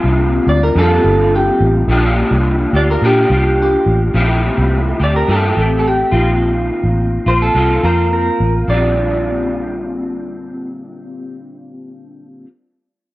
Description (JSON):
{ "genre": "indie pop, bedroom pop", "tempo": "106 BPM", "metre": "4/4", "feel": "straight", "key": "Bb major", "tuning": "A4 = 437 Hz", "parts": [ { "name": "electric guitar through a small old amp", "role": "accompaniment", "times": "0.0-12.5 s", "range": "Bb2 to G4", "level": "-17 LUFS", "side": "left 1 dB", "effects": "ensemble chorus, warbly pitch drift" }, { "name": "vintage muted fingered electric bass", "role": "bass", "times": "0.0-12.4 s", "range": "G1 to Bb2", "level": "-15 LUFS", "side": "equal", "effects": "none" }, { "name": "electric guitar through a small old amp", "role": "melody", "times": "0.5-12.4 s", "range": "G4 to D5", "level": "-17 LUFS", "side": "right 1 dB", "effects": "wide subtle chorus, analog delay" } ], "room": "light reverb, digital ambience", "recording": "worn, warbling old tape, cassette tape, warbly pitch drift", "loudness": "-12 LUFS", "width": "side -18 dB against mid", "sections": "0.0-8.7 A section; 8.7-10.9 B section", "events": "none", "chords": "0.0 Bbmaj9; 1.9 Bb69; 4.2 C13/Bb; 6.1 F7sus4; 8.7 Bb69" }